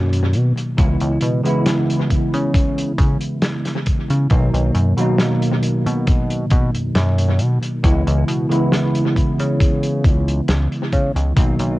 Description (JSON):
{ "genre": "vaporwave", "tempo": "68 BPM", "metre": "4/4", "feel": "straight", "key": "unclear", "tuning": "A4 = 441 Hz", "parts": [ { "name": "bell-like tine electric piano", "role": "accompaniment", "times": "0.0-11.8 s", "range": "B2 to E4", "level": "-19 LUFS", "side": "equal", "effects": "ensemble chorus, tape echo" }, { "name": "chorused synth bass", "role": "bass", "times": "0.0-11.8 s", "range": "B1 to C#3", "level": "-19 LUFS", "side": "equal", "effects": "none" }, { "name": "warm soul drum kit", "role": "drums", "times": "0.1-11.8 s", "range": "hi-hat, snare drum", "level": "-25 LUFS", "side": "equal", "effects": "tape echo" }, { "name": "electronic kick drum", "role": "drums", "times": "0.8-11.6 s", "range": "none", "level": "-17 LUFS", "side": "equal", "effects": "none" } ], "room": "studio reverb", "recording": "echo-heavy mix, cassette tape", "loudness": "-15 LUFS", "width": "side -18 dB against mid", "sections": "0.0-11.8 A section", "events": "none", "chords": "0.0 Bmaj7; 0.8 C#m7; 4.3 Bmaj7; 7.8 C#m7" }